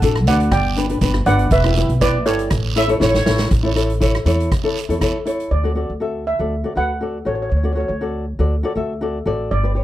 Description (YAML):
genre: calypso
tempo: 120 BPM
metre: 4/4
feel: straight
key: D major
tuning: A4 = 441 Hz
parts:
  - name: steel pan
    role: melody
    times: 0.0-9.8 s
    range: A4 to A5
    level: -21 LUFS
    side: right 2 dB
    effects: none
  - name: flamenco guitar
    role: accompaniment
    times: 0.0-9.8 s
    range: D4 to E5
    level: -21 LUFS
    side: left 2 dB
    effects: none
  - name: upright bass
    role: bass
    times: 0.0-9.8 s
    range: E1 to E2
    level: -20 LUFS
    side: equal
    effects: none
  - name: street-band drum kit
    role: drums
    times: 0.0-5.5 s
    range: hi-hat, kick drum, rim click, snare drum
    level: -22 LUFS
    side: equal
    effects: none
  - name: guiro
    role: percussion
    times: 0.0-5.1 s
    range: none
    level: -30 LUFS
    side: right 10 dB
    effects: none
  - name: warm horn section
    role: second line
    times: 2.8-3.5 s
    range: C#5 to E5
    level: -21 LUFS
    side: equal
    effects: none
room: little or no reverb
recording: dry, close 1970s-style studio recording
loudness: -16 LUFS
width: side -14 dB against mid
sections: 0.0-3.5 A section; 3.5-5.5 B section; 5.5-9.8 C section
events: drum fill 3.0-3.5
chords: 0.0 D; 0.5 G; 1.5 Em; 2.5 A; 5.5 D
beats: 0.02 0.52 1.02 | 1.52 2.01 2.51 3.01 | 3.51 4.01 4.51 5.01 | 5.51 6.01 6.51 7.01 | 7.51 8.02 8.52 9.02 | 9.52